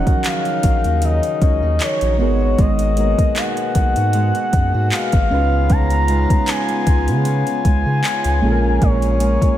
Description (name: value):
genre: contemporary R&B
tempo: 77 BPM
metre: 4/4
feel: swing 54% on 16ths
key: Eb minor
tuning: A4 = 440 Hz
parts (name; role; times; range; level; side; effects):
- gliding portamento lead; melody; 0.0-9.6 s; Db5 to Bb5; -21 LUFS; left 2 dB; chorus, tape echo
- muted felt-like synth keys; accompaniment; 0.0-9.6 s; F3 to Cb5; -24 LUFS; right 3 dB; chorus
- pedal harmonium; sustained chords; 0.0-9.6 s; Cb3 to Ab4; -27 LUFS; left 2 dB; sidechain pumping
- fingerpicked steel-string acoustic guitar; arpeggios; 0.0-9.6 s; Bb2 to Cb5; -28 LUFS; left 2 dB; tape echo
- saturated sub bass; bass; 0.0-9.5 s; Ab1 to Db3; -18 LUFS; equal; none
- smooth R&B drum kit; drums; 0.1-9.6 s; handclaps, hi-hat, kick drum; -18 LUFS; equal; none
room: light reverb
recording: none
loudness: -14 LUFS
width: side -12 dB against mid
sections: 0.0-9.6 A section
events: none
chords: 0.0 Ebm7; 2.2 Abm7; 5.3 Db7; 8.4 Bbm7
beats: 0.25 1.02 1.80 | 2.58 3.36 4.14 4.92 | 5.70 6.48 7.26 8.04 | 8.82